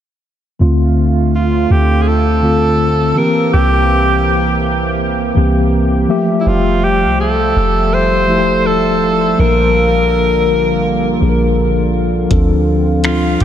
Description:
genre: contemporary R&B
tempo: 82 BPM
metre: 4/4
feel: swing 58% on 16ths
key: D minor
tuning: A4 = 441 Hz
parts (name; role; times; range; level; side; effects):
- mellow tine electric piano; accompaniment; 0.6-13.4 s; D3 to E5; -16 LUFS; left 2 dB; medium stereo tremolo
- warm analog pad; sustained chords; 0.6-13.4 s; D3 to E5; -20 LUFS; right 3 dB; chorus
- soft 808-style bass; bass; 0.6-13.4 s; F1 to D2; -16 LUFS; equal; none
- breathy alto saxophone; melody; 1.4-13.4 s; E4 to C5; -16 LUFS; equal; ping-pong delay
- booming analog drum machine; drums; 12.3-13.4 s; finger snaps, hi-hat, kick drum; -16 LUFS; equal; overdrive
room: moderate huge ambient reverb, RT60 4.8 s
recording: dreamy mix soaked in reverb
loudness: -11 LUFS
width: side -10 dB against mid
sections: 0.6-13.4 A section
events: none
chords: 0.6 Dm7; 3.2 C7; 6.1 Fmaj9; 9.4 Bb; 12.3 Dm7

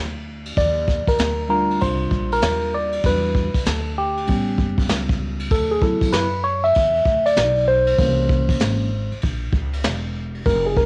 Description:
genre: hip hop, jazz-hop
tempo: 97 BPM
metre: 4/4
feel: swing 65% on 16ths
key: unclear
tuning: A4 = 441 Hz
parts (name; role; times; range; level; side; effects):
- upright bass; bass; 0.0-10.9 s; E1 to F#2; -28 LUFS; equal; none
- vintage brush drum kit; drums; 0.5-10.9 s; hi-hat, kick drum, ride cymbal, snare drum; -26 LUFS; equal; cassette tape
- tine electric piano; accompaniment; 0.6-10.9 s; E3 to E5; -22 LUFS; equal; phaser, cassette tape, plate reverb
room: moderate studio ambience, RT60 0.5 s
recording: home recording on cassette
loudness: -20 LUFS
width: mono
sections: 0.0-10.9 A section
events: tine electric piano solo 0.0-10.9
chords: 0.0 N.C.; 0.6 Ebmaj7; 3.0 Em7; 4.3 A7; 5.5 D69; 8.0 C7b9

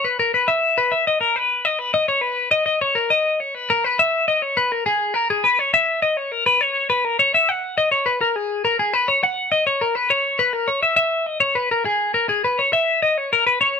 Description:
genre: rock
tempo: 68 BPM (dotted quarters)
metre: 6/8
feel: straight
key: unclear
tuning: A4 = 440 Hz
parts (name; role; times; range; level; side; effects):
- twelve-string electric guitar; solo; 0.0-13.8 s; G#4 to F#5; -17 LUFS; left 2 dB; none
room: light reverb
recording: band playing live in one room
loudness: -17 LUFS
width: side -6 dB against mid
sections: 0.0-4.0 A section; 4.0-13.8 B section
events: none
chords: none

